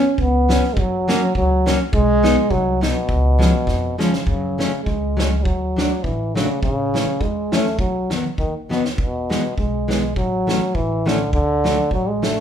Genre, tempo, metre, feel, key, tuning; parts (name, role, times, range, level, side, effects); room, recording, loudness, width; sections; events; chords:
alpine folk, alpine dance band; 102 BPM; 2/4; swing 55% on 8ths; F# minor from 4.3 s; A4 = 440 Hz
clear euphonium; melody; 0.0-12.4 s; B2 to C#4; -20 LUFS; equal
fingerpicked plugged-in steel-string acoustic guitar; accompaniment; 0.0-12.4 s; D#3 to D#4; -23 LUFS; left 2 dB
upright bass; bass; 0.2-12.4 s; A1 to F#2; -23 LUFS; equal
loose indie drum kit; drums; 0.2-12.4 s; hi-hat, kick drum, snare drum; -24 LUFS; equal
light reverb; band playing live in one room; -17 LUFS; side -9 dB against mid
0.0-4.3 A section; 4.3-12.4 B section
drum fill 3.7-4.3, 8.7
0.0 F#sus4; 0.8 F#; 1.9 B; 3.1 C#7; 4.3 F#m; 5.4 D; 6.6 A; 7.8 B; 9.0 E; 10.2 A; 11.3 D